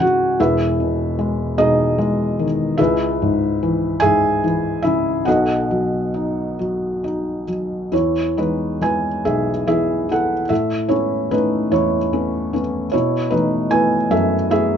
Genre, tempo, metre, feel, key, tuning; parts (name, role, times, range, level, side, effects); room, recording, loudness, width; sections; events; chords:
classical, lyrical solo piano; 44-51 BPM (dotted quarters); 6/8; rubato; E major; A4 = 439 Hz
felt-muted upright piano; solo; 0.0-14.8 s; E1 to G#5; -16 LUFS; equal
light reverb; nothing above 7.6 kHz; -17 LUFS; side -8 dB against mid
0.0-7.9 A section; 7.9-14.8 B section
0.4 Emaj7; 2.8 C#m7; 5.3 B7; 7.9 E; 10.5 Aadd9; 12.9 B7sus4